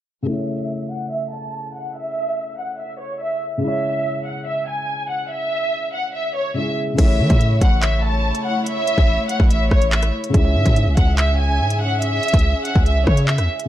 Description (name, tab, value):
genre	hip hop, drill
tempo	143 BPM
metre	4/4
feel	half-time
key	unclear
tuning	A4 = 440 Hz
part	dark concert grand piano	accompaniment	0.2-13.7 s	C#3 to C#5	-28 LUFS	left 1 dB	low-pass filter
part	warm studio violin section	melody	0.3-13.4 s	C#5 to A5	-23 LUFS	right 1 dB	low-pass filter
part	dark chamber string section	sustained chords	7.0-13.7 s	A3 to E5	-26 LUFS	left 1 dB	none
part	hard-hitting 808-style bass	bass	7.0-13.5 s	A1 to E3	-18 LUFS	equal	none
part	drill drum kit	drums	7.0-13.7 s	crash cymbal, handclaps, hi-hat, kick drum, rim click	-18 LUFS	equal	none
room	studio ambience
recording	dark, warm production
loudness	-17 LUFS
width	side -13 dB against mid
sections	0.3-7.0 A section; 7.0-13.7 B section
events	filter sweep 0.3-7.0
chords	0.3 A; 3.6 C#m; 7.0 A; 10.3 C#m